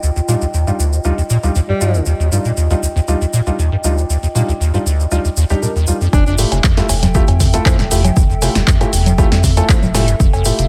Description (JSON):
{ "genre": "acid house", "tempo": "118 BPM", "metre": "4/4", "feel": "straight", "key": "F mixolydian", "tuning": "A4 = 440 Hz", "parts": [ { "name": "acid bass, square", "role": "riff", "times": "0.0-10.7 s", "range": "D2 to C3", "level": "-18 LUFS", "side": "equal", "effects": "tube saturation, ensemble chorus, cassette tape, sidechain pumping" }, { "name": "tube shaker", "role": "percussion", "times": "0.0-10.7 s", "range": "none", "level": "-28 LUFS", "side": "equal", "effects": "none" }, { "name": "warbly tape-like pad", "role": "texture", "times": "0.0-10.7 s", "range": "F4 to G5", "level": "-28 LUFS", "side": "equal", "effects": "chorus, built-in reverb, sidechain pumping" }, { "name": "warm concert grand piano", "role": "stabs", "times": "0.3-10.6 s", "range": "G3 to C5", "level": "-24 LUFS", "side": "equal", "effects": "delay" }, { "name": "clear alto saxophone", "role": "melody", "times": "1.7-2.1, 6.1-6.3 s", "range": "G3 to D4", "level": "-25 LUFS", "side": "equal", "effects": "delay" }, { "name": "round analog bass", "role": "bass", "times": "6.1-10.7 s", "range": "F1 to F2", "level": "-20 LUFS", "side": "equal", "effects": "sidechain pumping" }, { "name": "electronic kick drum", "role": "drums", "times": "6.1-10.3 s", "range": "none", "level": "-16 LUFS", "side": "equal", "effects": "overdrive" }, { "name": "punchy analog drum machine", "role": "drums", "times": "6.1-10.7 s", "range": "congas, cowbell, handclaps, hi-hat, snare drum", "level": "-22 LUFS", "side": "equal", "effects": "none" } ], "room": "little or no reverb", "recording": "none", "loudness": "-15 LUFS", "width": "mono", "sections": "0.0-6.1 A section; 6.1-10.7 B section", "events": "drop 6.1-10.7", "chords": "0.0 Ebmaj9; 6.1 Fmaj9" }